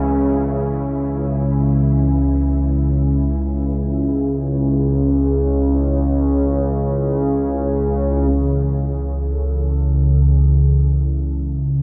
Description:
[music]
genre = dark ambient drone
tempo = free time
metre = none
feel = none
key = unclear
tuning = A4 = 440 Hz
[part]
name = deep dark ambient pad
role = sustained chords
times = 0.0-11.8 s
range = E3 to G#5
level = -34 LUFS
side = equal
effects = chorus, built-in reverb
[part]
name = dark detuned synth bell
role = arpeggios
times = 0.0-8.3 s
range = none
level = barely audible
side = none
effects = none
[part]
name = analog drone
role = drone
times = 0.0-11.8 s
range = C#2 to C#3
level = -18 LUFS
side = equal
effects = chorus
[part]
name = mellow horn-like synth lead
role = melody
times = 8.3-11.3 s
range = G#4 to A4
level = -39 LUFS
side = equal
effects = subtle chorus, diffuse ambient delay
[sound]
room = wet huge ambient reverb, RT60 7.6 s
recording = in a vast, echoing space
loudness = -18 LUFS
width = mono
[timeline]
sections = 0.0-8.3 A section; 8.3-11.8 B section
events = fade-out on ambient pad 0.0-8.3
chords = 0.0 C#m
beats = free time

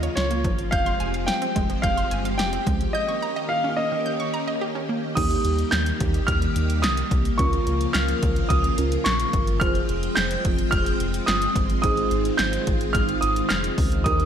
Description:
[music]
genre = synth-pop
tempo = 108 BPM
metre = 4/4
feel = straight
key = Eb mixolydian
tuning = A4 = 440 Hz
[part]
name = clear baby grand piano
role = melody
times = 0.0-14.3 s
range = Db5 to G6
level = -26 LUFS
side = right 1 dB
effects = tape echo, slapback echo
[part]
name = string machine, violins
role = sustained chords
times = 0.0-14.3 s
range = Db3 to G5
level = -29 LUFS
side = left 1 dB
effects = ensemble chorus
[part]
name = analog pluck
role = arpeggios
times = 0.0-5.0 s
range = Eb3 to G6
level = -30 LUFS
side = right 4 dB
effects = chorus, tape echo, slapback echo
[part]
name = round analog bass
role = bass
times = 0.0-14.3 s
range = F1 to Eb2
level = -26 LUFS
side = equal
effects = none
[part]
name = punchy analog drum machine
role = drums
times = 0.0-14.3 s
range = crash cymbal, handclaps, hi-hat, kick drum, snare drum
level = -25 LUFS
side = equal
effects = overdrive
[part]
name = FM electric piano with soft pad layer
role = accompaniment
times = 5.2-14.3 s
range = Bb3 to C5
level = -29 LUFS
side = right 2 dB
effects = chorus, tremolo, slapback echo
[sound]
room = moderate lush hall reverb, RT60 1.6 s, digital ambience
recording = big arena sound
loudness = -20 LUFS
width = side -8 dB against mid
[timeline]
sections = 0.0-5.2 A section; 5.2-14.3 B section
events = none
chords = 0.0 Bbm/Db; 0.7 Fmadd9; 2.9 Eb7; 5.2 Eb; 7.4 Bbm/Db; 9.6 Fmadd9; 11.8 Ab6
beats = 0.17 | 0.72 1.28 1.84 2.39 | 2.95 3.50 4.06 4.61 | 5.17 5.72 6.28 6.84 | 7.39 7.95 8.50 9.06 | 9.61 10.17 10.72 11.28 | 11.84 12.39 12.95 13.50 | 14.06

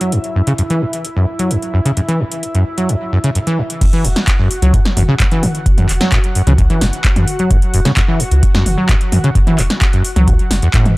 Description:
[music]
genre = acid house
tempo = 130 BPM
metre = 4/4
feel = straight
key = unclear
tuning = A4 = 440 Hz
[part]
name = lush unison pad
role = sustained chords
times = 0.0-11.0 s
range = E4 to F#5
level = -25 LUFS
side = equal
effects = chorus, sidechain pumping
[part]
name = acid bass, saw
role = riff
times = 0.0-10.9 s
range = E2 to F#3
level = -15 LUFS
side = equal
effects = overdrive, wide subtle chorus, cassette tape, sidechain pumping, tape echo
[part]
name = electro analog drum machine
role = drums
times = 0.0-10.9 s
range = crash cymbal, handclaps, hi-hat, snare drum, toms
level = -19 LUFS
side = equal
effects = overdrive
[part]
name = round analog bass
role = bass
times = 3.8-10.6 s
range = E1 to C#2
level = -15 LUFS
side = equal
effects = sidechain pumping
[part]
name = electronic kick drum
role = drums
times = 3.8-10.8 s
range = none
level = -14 LUFS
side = equal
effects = overdrive
[sound]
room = little or no reverb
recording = dry, gritty hardware recording, transformer saturation, faint mains hum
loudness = -12 LUFS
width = side -21 dB against mid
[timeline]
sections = 0.0-3.8 A section; 3.8-11.0 B section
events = drop 3.8-11.0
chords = 0.0 F#5; 3.8 F#7(no3)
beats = | 0.12 0.58 1.04 1.51 | 1.97 2.43 2.89 3.35 | 3.81 4.28 4.74 5.20 | 5.66 6.12 6.58 7.04 | 7.51 7.97 8.43 8.89 | 9.35 9.81 10.28 10.74

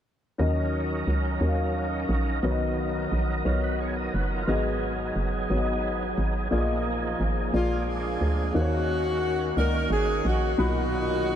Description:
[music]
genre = slow gospel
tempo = 59 BPM (dotted quarters)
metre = 6/8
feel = straight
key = Eb minor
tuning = A4 = 442 Hz
[part]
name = dark upright piano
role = accompaniment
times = 0.4-11.4 s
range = Ab2 to B5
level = -29 LUFS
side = left 3 dB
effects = none
[part]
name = overdriven tonewheel organ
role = sustained chords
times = 0.4-11.4 s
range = Db3 to D#5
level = -31 LUFS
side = right 3 dB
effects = fast rotary speaker, chorus vibrato
[part]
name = hollow knocking FM bass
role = bass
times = 0.4-11.4 s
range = F#1 to Eb2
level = -27 LUFS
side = equal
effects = none
[part]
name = warm saxophone section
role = melody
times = 7.6-11.4 s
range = Ab3 to Bb4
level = -27 LUFS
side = left 2 dB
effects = analog delay
[part]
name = mellow French horn section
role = sustained chords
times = 8.5-11.4 s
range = Gb4 to Eb5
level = -38 LUFS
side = right 8 dB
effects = stereo widening
[sound]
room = moderate huge ambient reverb, RT60 6.1 s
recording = dreamy mix soaked in reverb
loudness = -24 LUFS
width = side -10 dB against mid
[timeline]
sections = 0.4-8.6 A section; 8.6-11.4 B section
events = none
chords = 0.4 Ebm7; 2.4 Bmaj7; 6.5 Bb7sus4; 7.5 Bb7; 8.6 Ebm7; 10.6 Bmaj7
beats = | 0.39 1.42 | 2.44 3.46 | 4.48 5.50 | 6.52 7.54 | 8.55 9.57 | 10.58

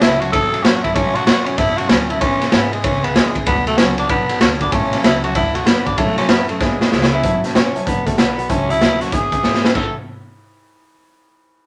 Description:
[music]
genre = rockabilly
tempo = 191 BPM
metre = 4/4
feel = swing 64% on 8ths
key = A major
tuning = A4 = 439 Hz
[part]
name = raspy tenor saxophone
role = melody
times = 0.0-9.9 s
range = G#3 to A4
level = -22 LUFS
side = equal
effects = none
[part]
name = bright upright piano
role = accompaniment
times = 0.0-9.9 s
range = B4 to B5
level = -30 LUFS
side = equal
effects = none
[part]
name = picked steel-string acoustic guitar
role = accompaniment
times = 0.0-9.9 s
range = A2 to A4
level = -28 LUFS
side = equal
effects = none
[part]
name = upright bass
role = bass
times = 0.0-9.9 s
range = E1 to A2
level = -30 LUFS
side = equal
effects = none
[part]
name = raw garage drum kit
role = drums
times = 0.0-9.8 s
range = crash cymbal, hi-hat, kick drum, ride cymbal, snare drum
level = -19 LUFS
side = equal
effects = none
[sound]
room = moderate studio reverb, RT60 0.5 s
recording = none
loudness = -16 LUFS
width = mono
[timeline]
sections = 0.0-7.2 A section; 7.2-9.8 B section; 9.8-11.0 C section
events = drum fill 6.6-7.2, 9.4-9.8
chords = 0.0 A6; 2.2 E6; 3.5 D6; 4.7 A6; 5.4 D6; 6.0 A6; 6.6 E6; 7.2 A6; 7.9 D6; 8.5 A6; 9.1 E6; 9.8 A6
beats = 0.02 0.33 0.65 | 0.96 1.27 1.59 1.90 | 2.22 2.53 2.84 3.16 | 3.47 3.79 4.10 4.41 | 4.73 5.04 5.36 5.67 | 5.98 6.30 6.61 6.93 | 7.24 7.55 7.87 8.18 | 8.50 8.81 9.13 9.44 | 9.75

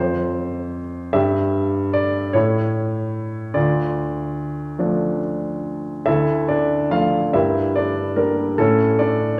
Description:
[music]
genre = classical, lyrical solo piano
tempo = 48 BPM (dotted quarters)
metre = 6/8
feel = uneven beats, rubato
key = D minor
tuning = A4 = 440 Hz
[part]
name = warm baby grand piano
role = solo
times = 0.0-9.4 s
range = D2 to F5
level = -20 LUFS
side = equal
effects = none
[sound]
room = wet recital hall reverb, RT60 1.7 s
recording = none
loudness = -21 LUFS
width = mono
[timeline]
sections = 0.0-6.1 A section; 6.1-9.4 B section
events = none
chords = 0.0 N.C.; 2.4 A; 3.6 Dm; 7.3 Gm; 8.6 A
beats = | 1.15 2.35 | 3.56 4.80 | 6.07 7.35 | 8.59

